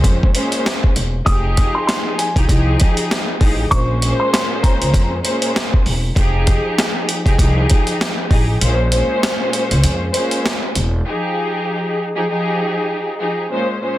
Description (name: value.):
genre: hip hop, boom-bap hip-hop.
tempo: 98 BPM.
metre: 4/4.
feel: swing 59% on 16ths.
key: F minor.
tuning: A4 = 440 Hz.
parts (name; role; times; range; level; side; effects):
clear studio string section; accompaniment; 0.0-14.0 s; Bb2 to C5; -20 LUFS; equal; high-pass filter, low-pass filter.
upright bass; bass; 0.0-11.0 s; E1 to F2; -18 LUFS; equal; none.
boom bap sampler-style drum kit; drums; 0.0-10.9 s; hi-hat, kick drum, snare drum; -17 LUFS; equal; none.
warm upright piano; melody; 1.3-5.1 s; Ab5 to Eb6; -22 LUFS; equal; high-pass filter, low-pass filter, tape echo.
room: light reverb.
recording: dense, heavily limited modern master.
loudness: -14 LUFS.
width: side -15 dB against mid.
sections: 0.0-11.1 A section; 11.1-14.0 B section.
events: kick muted 8.6-11.1.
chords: 0.0 Bbm9; 1.3 Fm9; 3.7 Bbm9; 6.2 Fm9; 8.6 Bbm9; 11.1 Fm9.